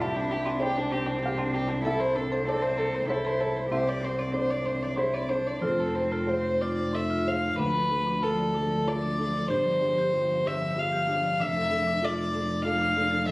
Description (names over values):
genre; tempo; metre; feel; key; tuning
neoclassical piano and strings; 96 BPM; 3/4; rubato; unclear; A4 = 440 Hz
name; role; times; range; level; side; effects
warm violin; melody; 0.0-13.3 s; D4 to F5; -27 LUFS; left 1 dB; none
rich cello; second line; 0.0-13.3 s; F3 to G4; -34 LUFS; right 1 dB; none
felt-muted upright piano; accompaniment; 0.0-13.3 s; C2 to C6; -33 LUFS; equal; none
marimba with hard mallets; arpeggios; 0.0-13.3 s; C4 to A5; -34 LUFS; equal; slapback echo
warm double bass; bass; 0.0-13.3 s; E1 to D2; -32 LUFS; equal; none
room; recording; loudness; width
light reverb; recorded on a phone in the room, club reverb, compression; -24 LUFS; side -22 dB against mid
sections
0.0-7.6 A section; 7.6-13.3 B section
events
none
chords
0.0 Csus2; 1.9 Am/C; 3.7 Csus2; 5.6 F; 7.6 Dm; 9.5 G7sus4; 11.4 Dm/F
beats
| 0.00 0.61 1.23 | 1.85 2.48 3.10 | 3.72 4.34 4.98 | 5.63 6.28 6.94 | 7.59 8.22 8.87 | 9.50 10.13 10.76 | 11.38 12.01 12.64 | 13.27